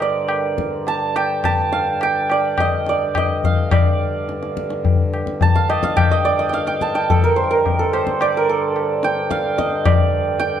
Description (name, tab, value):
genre	indian classical, Hindustani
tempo	107 BPM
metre	4/4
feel	straight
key	G raga darbari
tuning	A4 = 441 Hz
part	santur	melody	0.0-10.6 s	A4 to A5	-19 LUFS	right 3 dB	none
part	pedal harmonium	drone	0.0-10.6 s	G2 to D3	-27 LUFS	left 1 dB	none
part	tabla	percussion	0.0-10.6 s	none	-20 LUFS	left 4 dB	none
room	light reverb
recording	close, detailed microphones, lossy compression artefacts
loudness	-16 LUFS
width	side -9 dB against mid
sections	0.0-10.6 A section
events	speeding up 0.0-10.6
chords	none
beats	0.29 0.87 | 1.44 2.01 2.58 3.15 | 3.72 4.29 4.85 5.42 | 5.98 6.54 7.09 7.65 | 8.20 8.76 9.30 9.85 | 10.40